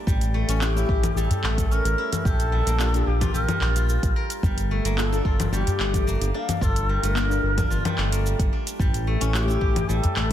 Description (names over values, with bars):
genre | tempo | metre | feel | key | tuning
organic downtempo | 110 BPM | 4/4 | straight | A phrygian dominant | A4 = 441 Hz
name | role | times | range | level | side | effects
deep mellow chord stab | accompaniment | 0.0-10.3 s | A3 to Bb4 | -33 LUFS | left 4 dB | chorus, phaser, sidechain pumping, digital delay
steel-string zither | arpeggios | 0.0-10.3 s | G3 to Bb4 | -30 LUFS | equal | digital delay
smooth synth bass | bass | 0.1-10.3 s | G1 to Bb1 | -24 LUFS | equal | sidechain pumping
electronic kick drum | drums | 0.1-10.3 s | none | -25 LUFS | equal | none
organic electronic drum kit | drums | 0.1-10.3 s | congas, handclaps, hi-hat, shaker | -29 LUFS | left 2 dB | none
udu | percussion | 0.1-10.1 s | none | -28 LUFS | equal | none
mellow Native American-style cedar flute | melody | 0.6-10.3 s | G4 to F5 | -29 LUFS | left 1 dB | digital delay
room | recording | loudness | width
little or no reverb | dense, heavily limited modern master | -20 LUFS | side -11 dB against mid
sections
0.0-10.3 A section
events
none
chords
0.1 A7; 2.3 Bb6; 4.4 Gm9; 8.8 A7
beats
| 0.07 0.62 1.16 1.71 | 2.25 2.80 3.34 3.89 | 4.43 4.98 5.53 6.07 | 6.62 7.16 7.71 8.25 | 8.80 9.34 9.89